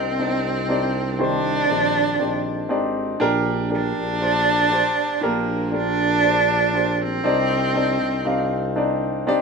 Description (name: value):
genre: pop ballad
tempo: 60 BPM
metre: 4/4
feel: straight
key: unclear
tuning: A4 = 441 Hz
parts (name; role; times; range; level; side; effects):
- rich cello; melody; 0.0-9.0 s; Bb3 to D4; -21 LUFS; right 3 dB; none
- dark concert grand piano; accompaniment; 0.0-9.4 s; Bb2 to F5; -23 LUFS; left 1 dB; none
- mellow tuba; bass; 0.0-9.4 s; Ab1 to C2; -27 LUFS; left 1 dB; none
room: moderate studio reverb, RT60 0.7 s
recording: band playing live in one room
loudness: -18 LUFS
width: side -4 dB against mid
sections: 0.0-9.4 A section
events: none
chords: 0.0 Cmadd9; 3.2 Gm/Bb; 7.2 Cmadd9